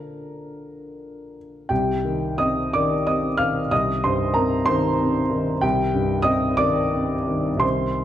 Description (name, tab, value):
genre	neoclassical minimalist piano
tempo	61 BPM (dotted quarters)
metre	6/8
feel	uneven beats, rubato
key	C minor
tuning	A4 = 440 Hz
part	dark upright piano	solo	0.0-8.0 s	C2 to F6	-20 LUFS	equal	none
room	moderate recital hall reverb, RT60 1.6 s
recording	none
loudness	-19 LUFS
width	side -11 dB against mid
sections	0.0-1.7 A section; 1.7-8.0 A section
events	none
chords	0.0 Bb; 1.7 Cm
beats	0.63 | 1.70 2.73 | 3.71 4.68 | 5.63 6.60 | 7.63